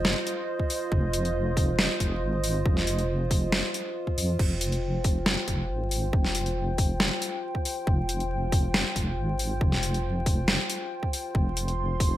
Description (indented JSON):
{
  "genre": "deep dubstep",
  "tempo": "138 BPM",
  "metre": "4/4",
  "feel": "half-time",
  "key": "F minor",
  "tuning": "A4 = 439 Hz",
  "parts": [
    { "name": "dark analog pad", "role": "sustained chords", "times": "0.0-12.2 s", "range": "F4 to C6", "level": "-31 LUFS", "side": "right 1 dB", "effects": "chorus" },
    { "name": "deep soft wobble bass", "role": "bass", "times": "0.0-12.2 s", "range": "F1 to F2", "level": "-28 LUFS", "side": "equal", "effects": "chorus" },
    { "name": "dubstep drum kit", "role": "drums", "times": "0.0-12.1 s", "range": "crash cymbal, hi-hat, snare drum", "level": "-28 LUFS", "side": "equal", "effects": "overdrive, gated reverb" },
    { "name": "electronic kick drum", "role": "drums", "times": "0.6-12.1 s", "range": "none", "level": "-26 LUFS", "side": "equal", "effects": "none" }
  ],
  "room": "light reverb, digital ambience",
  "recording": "bright 1980s-style digital production, vinyl crackle",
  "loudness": "-24 LUFS",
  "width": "side -13 dB against mid",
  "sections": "0.0-12.2 A section",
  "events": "none",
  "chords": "0.0 Fsus2",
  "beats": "0.05 0.48 | 0.92 1.35 1.79 2.22 | 2.66 3.09 3.53 3.96 | 4.39 4.83 5.26 5.70 | 6.13 6.57 7.00 7.44 | 7.87 8.31 8.74 9.18 | 9.61 10.05 10.48 10.92 | 11.35 11.79"
}